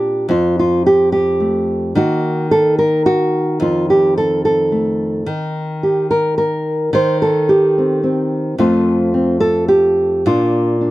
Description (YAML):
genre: folk, solo fingerstyle acoustic guitar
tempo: 109 BPM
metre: 3/4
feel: straight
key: unclear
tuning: A4 = 441 Hz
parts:
  - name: nylon-string guitar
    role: solo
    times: 0.0-10.9 s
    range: F2 to C5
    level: -13 LUFS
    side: equal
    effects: none
room: light reverb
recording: dry, close 1970s-style studio recording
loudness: -13 LUFS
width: side -17 dB against mid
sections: 0.0-10.9 A section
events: none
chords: 0.3 Fadd9; 2.0 Ebm; 3.6 F7; 5.3 Eb; 6.9 Cm/Eb; 8.6 F; 10.2 Bb